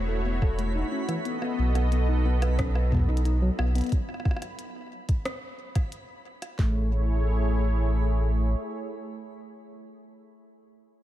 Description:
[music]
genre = IDM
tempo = 90 BPM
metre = 4/4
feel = straight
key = A lydian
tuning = A4 = 440 Hz
[part]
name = warm analog pad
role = sustained chords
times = 0.0-10.0 s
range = A3 to D#5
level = -33 LUFS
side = right 1 dB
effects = chorus
[part]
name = mellow tine electric piano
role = arpeggios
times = 0.0-6.9 s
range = E3 to B4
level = -33 LUFS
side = moving between left 4 dB and right 4 dB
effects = auto-pan, tape echo
[part]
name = warm sub bass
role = bass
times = 0.0-8.5 s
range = E1 to B1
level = -24 LUFS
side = equal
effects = none
[part]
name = backwards swelling texture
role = texture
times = 0.0-6.6 s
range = B5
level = -47 LUFS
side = right 2 dB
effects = built-in reverb, wide subtle chorus, sidechain pumping
[part]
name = glitchy drum kit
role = drums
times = 0.4-6.7 s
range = handclaps, kick drum, snare drum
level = -24 LUFS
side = equal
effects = overdrive, studio reverb
[part]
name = glitchy drum kit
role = drums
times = 0.4-6.6 s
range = hi-hat, rim click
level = -39 LUFS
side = equal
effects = overdrive, studio reverb, tape echo
[sound]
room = light reverb, digital ambience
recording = none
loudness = -24 LUFS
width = side -14 dB against mid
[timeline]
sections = 0.0-6.6 A section; 6.6-9.3 B section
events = none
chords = 0.0 A; 1.3 B7; 3.9 N.C.; 6.6 Amaj7

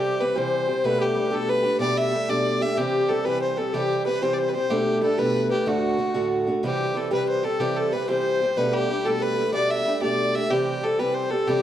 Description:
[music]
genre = celtic folk, Celtic jig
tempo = 124 BPM (dotted quarters)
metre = 6/8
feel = straight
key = unclear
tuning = A4 = 441 Hz
[part]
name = rich fiddle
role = melody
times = 0.0-11.6 s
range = F#4 to E5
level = -25 LUFS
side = equal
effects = none
[part]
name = reedy baroque flute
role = second line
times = 0.0-11.6 s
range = F#4 to E5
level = -29 LUFS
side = left 4 dB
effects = none
[part]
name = picked acoustic archtop guitar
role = accompaniment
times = 0.0-11.6 s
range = D2 to G4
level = -24 LUFS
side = right 1 dB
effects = none
[sound]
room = moderate recital hall reverb, RT60 1.7 s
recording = dark, warm production, faint mains hum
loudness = -21 LUFS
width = side -11 dB against mid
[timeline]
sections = 0.0-6.6 A section; 6.6-11.6 A section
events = none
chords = 0.0 C; 0.8 Gadd9/B; 2.8 C; 4.7 Gadd9/B; 5.7 D; 6.6 C; 8.6 Gadd9/B; 10.5 C

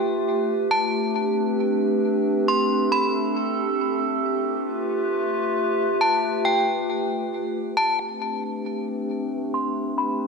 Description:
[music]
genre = hip hop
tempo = 136 BPM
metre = 4/4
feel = half-time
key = A minor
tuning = A4 = 442 Hz
[part]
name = warbly tape-like pad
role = sustained chords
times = 0.0-10.3 s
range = A3 to B4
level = -23 LUFS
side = equal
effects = chorus, built-in reverb, low-pass filter
[part]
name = metallic FM bell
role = melody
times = 0.7-3.1, 6.0-10.2 s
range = G5 to C6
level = -25 LUFS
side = equal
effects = chorus, low-pass filter, ping-pong delay
[sound]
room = moderate lush hall reverb, RT60 2.3 s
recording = none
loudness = -21 LUFS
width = side -4 dB against mid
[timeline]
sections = 0.0-8.0 A section; 8.0-10.3 B section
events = filter sweep 8.0-10.3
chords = 0.0 G9; 0.9 Am11; 4.5 G9; 8.0 Am11

